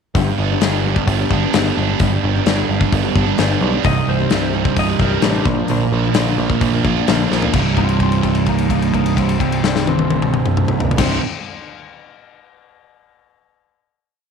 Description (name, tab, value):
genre	classic rock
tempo	130 BPM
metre	4/4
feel	straight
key	C minor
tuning	A4 = 440 Hz
part	picked electric bass	bass	0.1-11.2 s	C1 to B1	-21 LUFS	equal	none
part	big rock drum kit	drums	0.1-11.1 s	crash cymbal, hi-hat, kick drum, snare drum, toms	-20 LUFS	left 4 dB	none
part	picked steel-string acoustic guitar	accompaniment	0.2-11.2 s	G2 to Bb4	-24 LUFS	left 12 dB	none
part	sludgy distorted guitar	riff	0.2-11.2 s	C2 to F4	-19 LUFS	right 12 dB	overdrive
part	clean lap steel guitar	second line	3.9-11.2 s	G3 to Eb5	-24 LUFS	left 10 dB	none
room	light reverb, small room ambience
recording	1960s-style stereo with parts hard left and right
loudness	-14 LUFS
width	side -6 dB against mid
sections	0.2-7.5 verse; 7.5-11.3 final chord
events	drum fill 7.3; held note 7.5-11.0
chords	0.2 G; 3.9 Cm; 5.5 Bb; 7.5 Cm